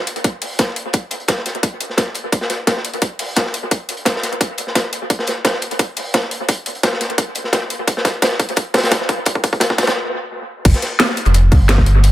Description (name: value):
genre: liquid drum and bass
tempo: 173 BPM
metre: 4/4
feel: straight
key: unclear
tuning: A4 = 439 Hz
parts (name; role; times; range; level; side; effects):
- crunchy breakbeat drum kit; drums; 0.1-12.1 s; hi-hat, snare drum; -20 LUFS; equal; high-pass filter on hats, high-pass filter on snare, high-pass filter on room, dub echo
- drum and bass drum kit; drums; 0.1-12.1 s; crash cymbal, hi-hat, snare drum; -19 LUFS; left 1 dB; overdrive, dub echo
- electronic kick drum; drums; 0.2-11.8 s; none; -16 LUFS; equal; overdrive, high-pass filter on kick
- sub bass with octave; bass; 10.7-12.1 s; F1 to D2; -11 LUFS; equal; none
room: light reverb, small room ambience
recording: echo-heavy mix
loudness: -15 LUFS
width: side -14 dB against mid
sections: 0.0-10.6 A section; 10.6-12.1 B section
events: build-up 0.0-10.6; drum fill 5.1-10.0; stop 10.0-10.6; drop 10.6-12.1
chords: none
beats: 0.24 0.59 | 0.94 1.28 1.63 1.98 | 2.33 2.67 3.02 3.37 | 3.71 4.06 4.41 4.75 | 5.10 5.45 5.79 6.14 | 6.49 6.83 7.18 7.53 | 7.88 8.22 8.57 8.91 | 9.26 9.61 9.96 10.30 | 10.65 11.00 11.34 11.69 | 12.04